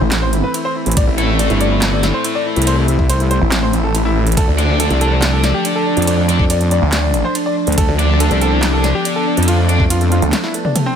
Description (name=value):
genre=heavy wobble dubstep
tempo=141 BPM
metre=4/4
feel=half-time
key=unclear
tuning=A4 = 441 Hz
part: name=clear grand piano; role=melody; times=0.0-10.9 s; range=A3 to D5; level=-21 LUFS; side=left 2 dB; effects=ping-pong delay
part: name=evolving wavetable pad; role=sustained chords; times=0.0-11.0 s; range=E3 to D4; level=-21 LUFS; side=right 2 dB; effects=chorus, built-in reverb, phaser, sidechain pumping
part: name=snarling distorted saw bass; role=bass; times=0.0-10.3 s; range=A1 to D2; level=-15 LUFS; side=equal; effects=distortion, overdrive
part: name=big-room dance drum kit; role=drums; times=0.1-10.8 s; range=handclaps, hi-hat, ride cymbal, snare drum, toms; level=-22 LUFS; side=right 1 dB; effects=none
part: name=wobble bass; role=bass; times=0.9-10.2 s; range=G1 to F2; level=-15 LUFS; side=equal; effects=chorus, overdrive
part: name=electronic kick drum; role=drums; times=1.0-9.9 s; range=none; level=-16 LUFS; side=equal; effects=overdrive
part: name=distorted electric guitar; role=stabs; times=1.2-9.8 s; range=A3 to D5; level=-22 LUFS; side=left 2 dB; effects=overdrive
room=light reverb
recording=none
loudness=-13 LUFS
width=side -8 dB against mid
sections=0.0-11.0 A section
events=break 10.3-11.0; drum fill 10.3-11.0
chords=0.0 Am; 4.4 Dm